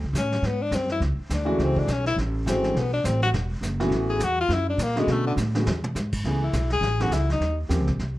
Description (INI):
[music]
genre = jazz, small-group swing and bop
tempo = 206 BPM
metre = 4/4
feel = swing 60% on 8ths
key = A major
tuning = A4 = 440 Hz
[part]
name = upright bass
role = bass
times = 0.0-8.2 s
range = E1 to B2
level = -25 LUFS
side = equal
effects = none
[part]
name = vintage brush drum kit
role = drums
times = 0.1-8.2 s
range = brushed snare drum, crash cymbal, hi-hat, kick drum, snare drum, toms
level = -32 LUFS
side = equal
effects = none
[part]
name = clear tenor saxophone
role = melody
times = 0.2-7.6 s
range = D3 to G#4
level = -26 LUFS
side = left 2 dB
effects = none
[part]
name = warm concert grand piano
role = accompaniment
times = 1.5-7.9 s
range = D3 to G#4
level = -27 LUFS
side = equal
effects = none
[sound]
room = moderate club reverb, RT60 0.6 s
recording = dark, warm production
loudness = -22 LUFS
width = side -16 dB against mid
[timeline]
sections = 0.0-6.2 A section; 6.2-8.2 A section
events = tenor saxophone solo 0.0-8.2; drum fill 5.4-6.0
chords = 0.4 G#7#9; 1.0 C#5; 1.6 F#m9; 2.8 Amadd9; 3.3 Esus2; 3.9 A69; 4.5 F#; 5.1 Bm7; 5.7 E; 6.2 Amaj9; 7.4 D#13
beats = 0.14 | 0.43 0.72 1.01 1.30 | 1.59 1.88 2.17 2.46 | 2.75 3.04 3.33 3.63 | 3.92 4.21 4.50 4.79 | 5.08 5.37 5.66 5.95 | 6.24 6.53 6.82 7.11 | 7.41 7.70 7.99